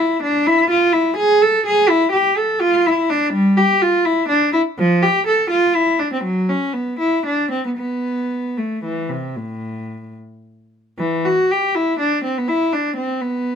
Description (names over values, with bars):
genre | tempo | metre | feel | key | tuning
classical, baroque-style suite movement for unaccompanied cello | 68-85 BPM (dotted quarters) | 12/8 | rubato | A minor | A4 = 440 Hz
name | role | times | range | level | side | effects
dark cello | solo | 0.0-13.6 s | A2 to A4 | -15 LUFS | equal | none
room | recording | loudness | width
light reverb | minimal, uncompressed stereo recording | -15 LUFS | side -7 dB against mid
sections
0.0-11.0 A section; 11.0-13.6 A section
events
none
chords
none